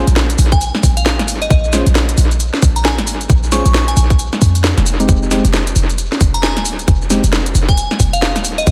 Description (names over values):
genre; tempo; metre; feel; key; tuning
UK garage, two-step garage; 134 BPM; 4/4; swing 61% on 16ths; Bb minor; A4 = 440 Hz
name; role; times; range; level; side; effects
percussive organ stab; stabs; 0.0-7.2 s; Ab3 to C5; -22 LUFS; equal; chorus, vintage 12-bit sampler grit, tape echo
short 808-style bass; bass; 0.0-8.7 s; Eb1 to F2; -17 LUFS; equal; none
garage drum kit; drums; 0.1-8.7 s; hi-hat, shaker, snare drum; -20 LUFS; equal; analog delay
glassy synth bell; melody; 0.5-8.7 s; Eb5 to Db6; -24 LUFS; equal; chorus, tremolo, phaser, analog delay
electronic kick drum; drums; 0.5-8.7 s; none; -16 LUFS; equal; none
room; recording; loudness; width
light reverb, digital ambience; echo-heavy mix; -14 LUFS; mono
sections
0.0-8.7 A section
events
none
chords
0.0 Bb7(no3); 4.9 Fm7